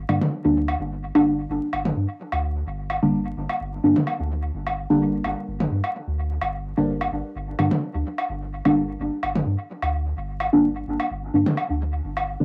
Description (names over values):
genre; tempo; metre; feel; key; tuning
dub techno; 128 BPM; 4/4; swing 54% on 16ths; G minor; A4 = 445 Hz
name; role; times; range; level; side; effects
soft dub sub bass; bass; 0.0-12.4 s; G1 to G2; -30 LUFS; equal; none
deep mellow chord stab; stabs; 0.1-12.4 s; D3 to D4; -24 LUFS; equal; chorus, phaser, cassette tape, dub echo
electronic woodblock and toms; percussion; 0.1-12.3 s; none; -30 LUFS; equal; cassette tape, dub echo
room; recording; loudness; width
moderate studio reverb, RT60 0.6 s; home recording on cassette, vinyl crackle; -24 LUFS; mono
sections
0.0-12.4 A section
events
filter sweep on synth stab 0.0-12.4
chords
0.0 Gm